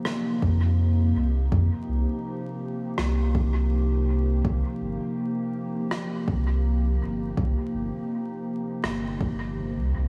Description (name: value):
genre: ambient dub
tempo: 82 BPM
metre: 4/4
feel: swing 53% on 16ths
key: C minor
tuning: A4 = 440 Hz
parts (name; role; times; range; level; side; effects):
- warbly tape-like pad; sustained chords; 0.0-10.1 s; C3 to G4; -31 LUFS; equal; chorus, built-in reverb
- rim click; drums; 0.1-9.0 s; none; -37 LUFS; equal; dub echo
- soft dub sub bass; bass; 0.4-10.1 s; G1 to F2; -26 LUFS; equal; none
- electronic kick drum; drums; 0.4-9.4 s; none; -30 LUFS; equal; overdrive
room: little or no reverb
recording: vinyl crackle, small room ambience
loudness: -26 LUFS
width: mono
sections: 0.0-10.1 A section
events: none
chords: 0.0 Cm7